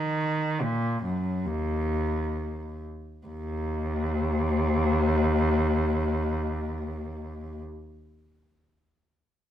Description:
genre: classical, baroque-style suite movement for unaccompanied cello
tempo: free time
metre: none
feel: none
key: Eb minor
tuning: A4 = 440 Hz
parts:
  - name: rich cello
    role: solo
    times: 0.0-7.6 s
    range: Eb2 to Eb3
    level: -26 LUFS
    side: equal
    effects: none
room: wet stone room reverb, RT60 1.1 s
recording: heard from further back in the room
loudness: -25 LUFS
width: side -10 dB against mid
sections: 0.0-3.3 A section; 3.3-6.8 B section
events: slowing down 0.0-3.3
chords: none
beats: free time

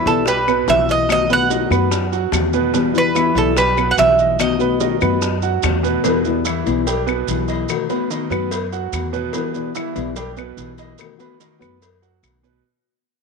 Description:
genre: latin, Cuban son and guajira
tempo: 145 BPM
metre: 4/4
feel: straight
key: E harmonic minor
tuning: A4 = 440 Hz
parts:
  - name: Cuban tres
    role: melody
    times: 0.0-5.6 s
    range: A4 to F#5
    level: -17 LUFS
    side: right 3 dB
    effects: none
  - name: nylon-string guitar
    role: accompaniment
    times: 0.0-12.6 s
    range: B2 to F#4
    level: -22 LUFS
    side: left 12 dB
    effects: none
  - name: clear grand piano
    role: arpeggios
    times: 0.0-12.6 s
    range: B2 to B5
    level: -23 LUFS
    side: right 12 dB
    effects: none
  - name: upright bass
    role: bass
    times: 0.1-12.6 s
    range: B1 to F#2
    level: -24 LUFS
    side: right 1 dB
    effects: none
  - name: maracas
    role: percussion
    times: 0.1-12.6 s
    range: none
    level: -31 LUFS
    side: right 16 dB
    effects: none
  - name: bongos and cowbell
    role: percussion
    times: 0.3-12.4 s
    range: none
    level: -27 LUFS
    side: left 12 dB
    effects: none
  - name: claves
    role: percussion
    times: 0.5-12.4 s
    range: none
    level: -27 LUFS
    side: left 11 dB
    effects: none
room: moderate echo chamber reverb, RT60 1.7 s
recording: 1960s-style stereo with parts hard left and right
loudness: -15 LUFS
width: side -4 dB against mid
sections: 0.0-6.0 A section; 6.0-12.6 B section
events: fade-out 6.0-12.6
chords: 0.0 Em; 1.1 B7; 2.7 Em; 4.4 B7; 6.0 Em; 7.7 B7; 9.3 Em; 11.0 B7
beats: 0.27 0.68 | 1.09 1.50 1.92 2.33 | 2.74 3.15 3.57 3.98 | 4.39 4.80 5.22 5.63 | 6.04 6.45 6.87 7.28 | 7.69 8.10 8.52 8.93 | 9.34 9.75 10.17 10.58 | 10.99 11.40 11.82 12.23

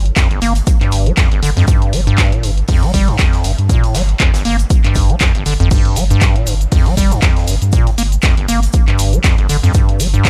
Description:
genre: acid house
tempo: 119 BPM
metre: 4/4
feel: swing 56% on 16ths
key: G minor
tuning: A4 = 440 Hz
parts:
  - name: warm sub bass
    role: bass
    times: 0.0-10.2 s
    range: G1 to G2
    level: -18 LUFS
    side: equal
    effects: sidechain pumping
  - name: punchy analog drum machine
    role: drums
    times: 0.1-10.3 s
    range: crash cymbal, handclaps, hi-hat, shaker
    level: -22 LUFS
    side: equal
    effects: none
  - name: acid bass, square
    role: riff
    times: 0.2-10.3 s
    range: G1 to Bb3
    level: -18 LUFS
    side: equal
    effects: analog delay
  - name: electronic kick drum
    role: drums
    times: 0.2-10.3 s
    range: none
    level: -16 LUFS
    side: equal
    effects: none
  - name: oversized low-tuned drum kit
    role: drums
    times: 0.2-10.3 s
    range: hi-hat, shaker, snare drum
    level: -33 LUFS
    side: equal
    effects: sidechain pumping on hats, high-pass filter on hats, high-pass filter on snare, sidechain pumping on perc, high-pass filter on perc, high-pass filter on room
room: little or no reverb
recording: none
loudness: -13 LUFS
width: mono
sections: 0.0-10.3 A section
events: none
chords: none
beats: 0.17 0.67 1.17 | 1.68 2.18 2.69 3.19 | 3.69 4.20 4.70 5.21 | 5.71 6.22 6.72 7.22 | 7.73 8.23 8.74 9.24 | 9.74 10.25

